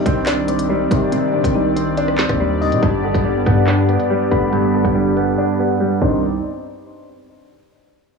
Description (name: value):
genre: hip hop, drill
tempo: 141 BPM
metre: 4/4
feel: half-time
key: C harmonic minor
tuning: A4 = 440 Hz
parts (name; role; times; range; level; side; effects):
- warm baby grand piano; accompaniment; 0.0-6.2 s; G2 to D4; -18 LUFS; right 4 dB; low-pass filter, cassette tape
- warm analog pad; sustained chords; 0.0-6.2 s; Eb3 to D5; -23 LUFS; left 2 dB; chorus, cassette tape
- soft electric-piano-like synth keys; arpeggios; 0.0-6.2 s; G3 to B5; -23 LUFS; left 11 dB; chorus, low-pass filter, cassette tape, analog delay
- long sustained 808-style bass; bass; 0.0-6.4 s; F1 to C3; -23 LUFS; left 1 dB; none
- drill drum kit; drums; 0.1-6.1 s; crash cymbal, handclaps, hi-hat, kick drum, rim click, snare drum; -20 LUFS; equal; cassette tape
room: light reverb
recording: home recording on cassette, low-pass filter, studio ambience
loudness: -15 LUFS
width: side -4 dB against mid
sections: 0.0-6.2 A section; 6.2-7.9 B section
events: filter sweep 0.0-6.2; drums muted 5.4-6.2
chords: 0.0 Cmadd9; 2.8 G; 6.0 Cmadd9; 6.2 N.C.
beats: 0.27 0.70 | 1.12 1.55 1.97 2.40 | 2.83 3.25 3.68 4.10 | 4.53 4.95 5.38 5.80 | 6.23